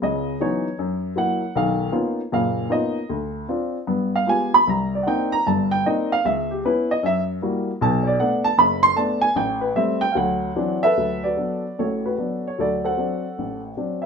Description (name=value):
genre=solo jazz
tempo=152 BPM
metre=4/4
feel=swing 66% on 8ths, rubato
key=D major from 11.0 s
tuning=A4 = 440 Hz
part: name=warm baby grand piano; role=solo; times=0.0-14.1 s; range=F#1 to C6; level=-19 LUFS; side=equal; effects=none
room=moderate studio reverb, RT60 0.6 s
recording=minimal, uncompressed stereo recording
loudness=-19 LUFS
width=side -6 dB against mid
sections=0.0-11.0 A section; 11.0-14.1 B section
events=grand piano solo 0.0-11.0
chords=0.0 C#m11; 0.8 F#7; 1.5 Bmaj9#11; 3.1 Dm7; 3.9 G7b9; 4.7 Cm9; 6.3 C#m9b5; 7.1 F#7b9; 7.8 Bm7; 9.4 Am7; 10.1 D9; 11.0 D6; 12.6 D7